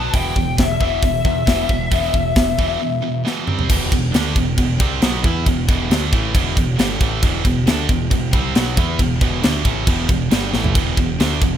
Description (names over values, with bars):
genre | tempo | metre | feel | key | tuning
heavy metal | 136 BPM | 4/4 | straight | E minor | A4 = 440 Hz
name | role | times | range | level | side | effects
high-gain lead guitar | melody | 0.0-3.2 s | E5 to A5 | -21 LUFS | left 7 dB | distortion
heavy high-gain guitar | riff | 0.0-11.6 s | E2 to E4 | -26 LUFS | left 9 dB | distortion
heavy high-gain guitar | riff | 0.0-11.6 s | E2 to E4 | -23 LUFS | right 10 dB | distortion
growling picked electric bass | bass | 0.0-11.6 s | E1 to E2 | -24 LUFS | equal | overdrive
tight metal drum kit | drums | 0.1-11.5 s | crash cymbal, hi-hat, kick drum, snare drum, toms | -18 LUFS | equal | none
room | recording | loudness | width
little or no reverb | rough home demo mix | -15 LUFS | side -10 dB against mid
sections
0.0-3.7 A section; 3.7-11.6 B section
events
break 2.8-3.7; drum fill 3.3-3.7, 10.5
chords
0.1 E5; 3.5 C5; 3.7 Em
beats
| 0.14 0.58 1.03 1.48 | 1.92 2.37 2.81 3.25 | 3.69 4.14 4.58 5.02 | 5.46 5.90 6.34 6.78 | 7.22 7.67 8.11 8.55 | 8.99 9.43 9.87 10.31 | 10.75 11.20